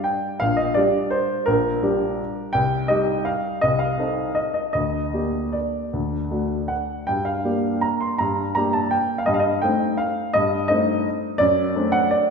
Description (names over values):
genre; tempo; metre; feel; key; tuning
classical, piano waltz; 148-176 BPM; 3/4; rubato; G minor; A4 = 440 Hz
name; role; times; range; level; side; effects
warm baby grand piano; solo; 0.0-12.3 s; Bb1 to C6; -20 LUFS; equal; none
room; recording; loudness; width
wet scoring stage reverb, RT60 1.9 s; recorded in a church or concert hall; -20 LUFS; side -5 dB against mid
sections
0.0-12.3 A section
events
none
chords
0.4 Gm/Bb; 2.5 Cm; 3.6 Adim/C; 4.8 Gm/D; 5.9 D; 7.1 Gm; 9.3 Am7b5/G; 11.4 D7/F#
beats
0.05 | 0.41 0.76 1.12 | 1.48 1.83 2.19 | 2.55 2.90 3.27 | 3.63 4.00 4.37 | 4.75 5.14 5.55 | 5.94 6.32 6.71 | 7.09 7.46 7.84 | 8.21 8.56 8.93 | 9.28 9.63 9.99 | 10.34 10.69 11.05 | 11.41 11.76 12.12